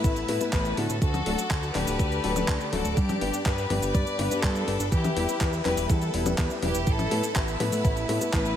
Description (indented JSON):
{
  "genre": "italo disco",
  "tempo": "123 BPM",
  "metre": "4/4",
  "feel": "straight",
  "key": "unclear",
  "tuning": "A4 = 438 Hz",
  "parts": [
    { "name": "clear studio violin section", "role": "melody", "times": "0.0-8.6 s", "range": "B3 to D5", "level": "-30 LUFS", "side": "left 2 dB", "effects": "digital delay" },
    { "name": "phased string machine", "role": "sustained chords", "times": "0.0-8.6 s", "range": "A4 to E6", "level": "-35 LUFS", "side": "right 1 dB", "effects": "ensemble chorus, phaser" },
    { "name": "warm grand piano", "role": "stabs", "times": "0.0-8.5 s", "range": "G2 to B4", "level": "-31 LUFS", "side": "left 3 dB", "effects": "none" },
    { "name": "fat analog bass", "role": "bass", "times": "0.0-8.5 s", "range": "D1 to A2", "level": "-30 LUFS", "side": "right 1 dB", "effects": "none" },
    { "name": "clean 12-bit digital drum machine", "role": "drums", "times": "0.0-8.6 s", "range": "cabasa, handclaps, hi-hat, toms", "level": "-32 LUFS", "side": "left 2 dB", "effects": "gated reverb" },
    { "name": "electronic kick drum", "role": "drums", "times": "0.0-8.4 s", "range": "none", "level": "-25 LUFS", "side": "right 1 dB", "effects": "none" }
  ],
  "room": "light reverb, digital ambience",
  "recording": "none",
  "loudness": "-23 LUFS",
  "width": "side -10 dB against mid",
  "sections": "0.0-8.6 A section",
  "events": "none",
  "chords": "0.0 Asus2; 1.0 D; 3.0 G; 4.9 Em; 6.9 Asus2",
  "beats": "0.04 0.53 | 1.02 1.51 1.99 2.48 | 2.97 3.46 3.94 4.43 | 4.92 5.41 5.90 6.38 | 6.87 7.36 7.85 8.34"
}